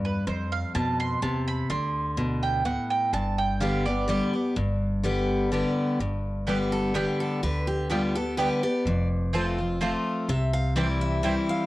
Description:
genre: bluegrass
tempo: 126 BPM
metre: 3/4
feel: straight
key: G mixolydian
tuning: A4 = 440 Hz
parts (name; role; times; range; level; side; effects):
- picked steel-string acoustic guitar; accompaniment; 0.0-11.7 s; F2 to G4; -26 LUFS; left 1 dB; cassette tape
- mandolin; stabs; 0.0-11.3 s; B3 to C6; -30 LUFS; right 4 dB; cassette tape
- upright bass; bass; 0.0-11.3 s; F1 to F2; -31 LUFS; equal; none
- picked steel-string acoustic guitar; melody; 6.7-11.7 s; F4 to F5; -31 LUFS; equal; none
room: light reverb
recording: home recording on cassette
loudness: -24 LUFS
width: side -17 dB against mid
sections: 0.0-6.0 A section; 6.0-11.7 B section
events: mandolin solo 0.0-6.0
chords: 0.3 F5; 1.7 D5; 3.1 G; 8.9 F; 10.3 C

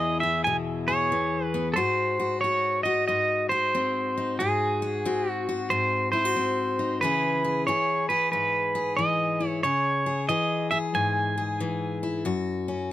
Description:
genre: country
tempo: 92 BPM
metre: 4/4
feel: swing 64% on 8ths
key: unclear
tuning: A4 = 440 Hz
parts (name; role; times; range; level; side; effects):
- pedal steel guitar; melody; 0.0-12.0 s; G#4 to G#5; -25 LUFS; right 2 dB; none
- picked steel-string acoustic guitar; accompaniment; 0.0-12.9 s; E2 to G#4; -28 LUFS; left 3 dB; none
room: light reverb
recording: close, detailed microphones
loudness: -23 LUFS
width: side -13 dB against mid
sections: 0.0-12.9 A section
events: none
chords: 0.0 E; 1.8 G#7; 7.0 C#m; 12.3 F#5

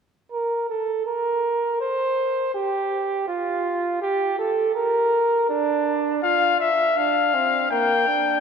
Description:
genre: classical, imitative canzona for brass ensemble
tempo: 81 BPM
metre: 4/4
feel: straight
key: unclear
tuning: A4 = 440 Hz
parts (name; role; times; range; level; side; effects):
- warm flugelhorn; second line; 0.3-8.4 s; Bb3 to C5; -22 LUFS; right 2 dB; none
- clear trumpet; melody; 6.2-8.4 s; E5 to G5; -19 LUFS; left 6 dB; none
room: wet church reverb, RT60 3.5 s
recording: dark, warm production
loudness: -20 LUFS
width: side -6 dB against mid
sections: 0.3-8.4 A section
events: none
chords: 0.3 N.C.; 6.2 F5; 7.7 Gm/Bb

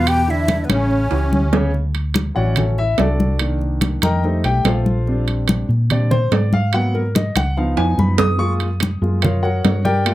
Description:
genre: Afro-Cuban jazz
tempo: 144 BPM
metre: 4/4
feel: straight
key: unclear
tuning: A4 = 440 Hz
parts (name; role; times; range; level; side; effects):
- breathy hollow jazz flute; melody; 0.0-1.5 s; B4 to G5; -23 LUFS; left 1 dB; none
- musette accordion; second line; 0.0-1.5 s; B3 to G4; -23 LUFS; right 1 dB; none
- warm concert grand piano; accompaniment; 0.0-10.1 s; B2 to Eb6; -21 LUFS; left 1 dB; none
- hollow-body short-scale fingered electric bass; bass; 0.0-10.1 s; A1 to Bb2; -19 LUFS; equal; none
- congas; percussion; 0.1-10.1 s; none; -21 LUFS; left 1 dB; none
- timbales; percussion; 0.1-10.1 s; none; -23 LUFS; right 7 dB; none
room: moderate club reverb, RT60 0.5 s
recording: none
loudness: -15 LUFS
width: side -15 dB against mid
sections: 0.0-1.7 A section; 1.7-10.1 B section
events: drum fill 1.1-1.7, 7.8-8.4; grand piano solo 1.7-10.1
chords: 0.1 E7sus4; 0.9 A7; 1.7 Dmaj7; 3.4 Cm7; 4.2 F7; 5.1 Bb6; 6.7 G#m7; 7.6 C#7; 8.4 F#maj7

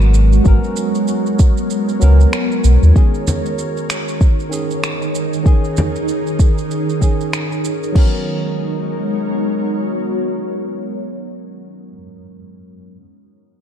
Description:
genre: organic downtempo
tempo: 96 BPM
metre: 4/4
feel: swing 59% on 16ths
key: G# minor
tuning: A4 = 439 Hz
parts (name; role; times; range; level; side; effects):
- barky tine electric piano; accompaniment; 0.0-13.0 s; D#3 to A#4; -24 LUFS; left 1 dB; auto-pan, sidechain pumping, tape echo
- ethereal airy pad; sustained chords; 0.0-11.2 s; D#3 to C#5; -20 LUFS; right 1 dB; ensemble chorus, built-in reverb, phaser, sidechain pumping
- warm sub bass; bass; 0.0-2.9 s; G#1 to D#2; -9 LUFS; equal; sidechain pumping
- organic electronic drum kit; drums; 0.0-8.1 s; crash cymbal, finger snaps, shaker; -26 LUFS; right 2 dB; none
- electronic kick drum; drums; 0.5-8.1 s; none; -12 LUFS; equal; none
- frame drum; percussion; 3.3-5.9 s; none; -19 LUFS; left 1 dB; none
room: light reverb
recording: dark, warm production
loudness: -14 LUFS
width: side -9 dB against mid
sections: 0.0-8.0 A section; 8.0-10.5 B section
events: none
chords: 0.0 G#m11; 3.0 D#7sus4; 8.0 G#m11

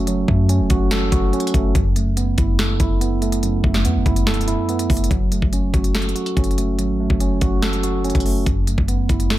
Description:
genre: hip hop, trap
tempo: 143 BPM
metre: 4/4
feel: half-time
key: F# minor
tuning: A4 = 440 Hz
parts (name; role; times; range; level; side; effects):
- mellow tine electric piano; accompaniment; 0.0-9.4 s; F#2 to A4; -21 LUFS; right 2 dB; low-pass filter
- clean 808-style bass; bass; 0.0-9.4 s; E1 to F#2; -21 LUFS; left 1 dB; none
- trap drum kit; drums; 0.1-9.4 s; hi-hat, kick drum, snare drum; -21 LUFS; equal; overdrive
room: light reverb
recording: none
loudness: -16 LUFS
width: side -15 dB against mid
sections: 0.0-5.1 A section; 5.1-9.4 B section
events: none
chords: 0.0 F#m; 1.8 Asus2/F#; 5.1 F#m; 8.5 Asus2/F#

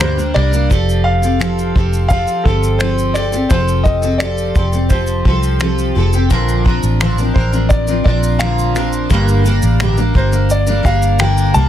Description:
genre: acoustic pop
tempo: 86 BPM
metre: 4/4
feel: straight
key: Bb major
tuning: A4 = 440 Hz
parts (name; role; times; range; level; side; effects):
- clear upright piano; melody; 0.0-11.7 s; A4 to A5; -20 LUFS; left 1 dB; none
- picked steel-string acoustic guitar; accompaniment; 0.0-11.7 s; G2 to Bb4; -18 LUFS; left 1 dB; double-tracked left and right
- vintage muted fingered electric bass; bass; 0.0-11.7 s; F1 to D2; -16 LUFS; equal; none
- cloth-damped thuddy drum kit; drums; 0.0-11.7 s; finger snaps, kick drum, shaker; -17 LUFS; equal; soft clipping on snare
room: light reverb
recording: dense, heavily limited modern master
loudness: -12 LUFS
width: side -11 dB against mid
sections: 0.0-6.3 A section; 6.3-11.7 B section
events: none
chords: 0.0 Gm; 0.7 Fadd9; 6.3 Bbadd9; 9.1 Gm

